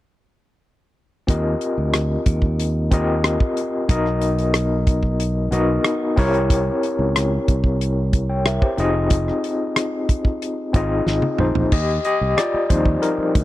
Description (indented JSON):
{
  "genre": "lush 1970s-style soul",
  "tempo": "92 BPM",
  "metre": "4/4",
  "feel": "straight",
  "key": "Eb major",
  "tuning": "A4 = 440 Hz",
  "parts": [
    { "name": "overdriven tine electric piano", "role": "accompaniment", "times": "1.3-13.4 s", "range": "F3 to G5", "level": "-21 LUFS", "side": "left 2 dB", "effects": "medium tremolo" },
    { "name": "fingered electric bass", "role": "bass", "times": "1.3-13.4 s", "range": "F1 to Eb2", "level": "-22 LUFS", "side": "right 1 dB", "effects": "none" },
    { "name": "damped 70s drum kit", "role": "drums", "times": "1.3-13.4 s", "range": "crash cymbal, hi-hat, kick drum, rim click, snare drum, toms", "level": "-19 LUFS", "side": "equal", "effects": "none" }
  ],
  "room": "small room ambience",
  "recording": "dry, close 1970s-style studio recording",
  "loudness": "-17 LUFS",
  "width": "side -15 dB against mid",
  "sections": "1.3-11.7 A section; 11.7-13.4 B section",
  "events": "drum fill 11.1-11.7; tine electric piano solo 11.7-13.4",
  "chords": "1.3 Eb69; 3.9 Bmaj7; 6.2 C7b9; 8.8 Fm7; 11.7 Eb69",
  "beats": "| 1.28 1.93 2.58 3.24 | 3.89 4.54 5.20 5.85 | 6.50 7.15 7.81 8.46 | 9.11 9.76 10.42 11.07 | 11.72 12.37 13.03"
}